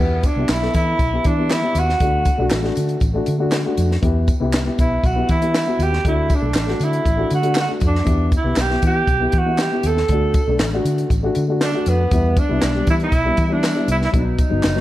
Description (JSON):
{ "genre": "uptempo 1960s-style soul", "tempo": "119 BPM", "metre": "4/4", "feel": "straight", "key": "E minor", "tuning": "A4 = 438 Hz", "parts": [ { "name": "breathy tenor saxophone", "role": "melody", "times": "0.0-14.8 s", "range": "B3 to A4", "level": "-21 LUFS", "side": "right 2 dB", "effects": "slapback echo" }, { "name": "dark upright piano", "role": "accompaniment", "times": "0.0-14.8 s", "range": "F#3 to A4", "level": "-23 LUFS", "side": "left 3 dB", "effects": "none" }, { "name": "vintage muted fingered electric bass", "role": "bass", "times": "0.0-14.8 s", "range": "F#1 to E3", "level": "-21 LUFS", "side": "equal", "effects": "none" }, { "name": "compact cocktail drum kit", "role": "drums", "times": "0.2-14.8 s", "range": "hi-hat, kick drum, snare drum", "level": "-21 LUFS", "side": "equal", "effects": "none" }, { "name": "tambourine and handclaps", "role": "percussion", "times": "0.2-14.8 s", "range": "none", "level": "-34 LUFS", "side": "right 2 dB", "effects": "none" } ], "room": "light reverb", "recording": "dark, warm production", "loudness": "-16 LUFS", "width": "side -14 dB against mid", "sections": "0.0-14.8 A section", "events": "none", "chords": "0.0 Em; 2.0 D; 4.0 Em; 6.0 D; 8.1 Em; 10.1 D; 12.1 Em; 14.1 B", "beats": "0.49 1.00 1.50 | 2.01 2.51 3.02 3.52 | 4.03 4.53 5.04 5.54 | 6.05 6.55 7.06 7.57 | 8.07 8.58 9.08 9.59 | 10.10 10.60 11.11 11.61 | 12.12 12.62 13.13 13.63 | 14.14 14.64" }